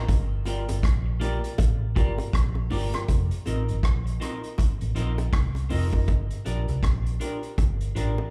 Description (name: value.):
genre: roots reggae.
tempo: 80 BPM.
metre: 4/4.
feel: swing 60% on 16ths.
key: G minor.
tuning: A4 = 440 Hz.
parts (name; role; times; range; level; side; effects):
dark upright piano; stabs; 0.0-8.1 s; Eb4 to Bb4; -39 LUFS; equal; slapback echo.
vintage muted fingered electric bass; bass; 0.0-8.2 s; F1 to C2; -29 LUFS; equal; none.
vintage drum kit; drums; 0.1-8.2 s; hi-hat, kick drum, rim click; -28 LUFS; equal; none.
bongos; percussion; 0.1-8.3 s; none; -41 LUFS; equal; slapback echo.
clean electric guitar; accompaniment; 0.5-8.1 s; Bb3 to Eb5; -40 LUFS; equal; lush chorus, dub echo, slapback echo.
room: small room ambience.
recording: live gig heard through the venue's PA, club reverb.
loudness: -26 LUFS.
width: mono.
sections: 0.0-3.1 A section; 3.1-8.3 B section.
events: none.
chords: 0.1 Gm7; 3.1 F7sus4; 6.1 Gm7.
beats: | 0.09 0.83 1.58 2.33 | 3.08 3.83 4.58 5.33 | 6.08 6.83 7.58.